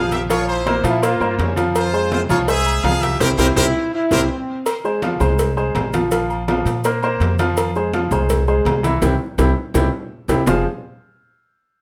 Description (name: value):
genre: latin, salsa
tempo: 165 BPM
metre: 4/4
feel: straight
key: F harmonic minor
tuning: A4 = 442 Hz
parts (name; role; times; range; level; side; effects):
- brilliant trumpet section; melody; 0.0-4.2 s; E4 to F5; -25 LUFS; equal; tape echo
- clear upright piano; accompaniment; 0.0-10.6 s; E3 to F5; -22 LUFS; equal; none
- upright bass; bass; 0.0-10.6 s; F1 to Bb2; -24 LUFS; equal; none
- congas; percussion; 0.1-10.6 s; none; -29 LUFS; equal; none
- cowbell and bongos; percussion; 0.1-10.6 s; none; -27 LUFS; equal; none
- maracas; percussion; 0.1-10.6 s; none; -39 LUFS; equal; none
- agogo bells and timbales; percussion; 0.3-10.6 s; none; -30 LUFS; equal; none
- clear trombone section; second line; 0.8-4.7 s; C4 to F4; -24 LUFS; equal; none
room: moderate studio reverb, RT60 0.8 s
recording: none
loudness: -18 LUFS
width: mono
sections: 0.0-4.7 A section; 4.7-10.5 B section; 10.5-11.8 C section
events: band accent 3.2-4.7, 9.0-10.5; drum fill 4.1-4.7, 9.0-10.5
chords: 0.3 Bbsus2; 1.8 Fm; 3.2 C7; 4.7 Fm; 6.1 Bbsus2; 7.6 Fm; 9.0 C; 10.5 Fm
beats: | 0.30 0.66 1.02 1.39 | 1.75 2.12 2.48 2.84 | 3.21 3.57 3.93 4.30 | 4.66 5.02 5.39 5.75 | 6.11 6.48 6.84 7.20 | 7.57 7.93 8.29 8.66 | 9.02 9.38 9.74 10.11 | 10.47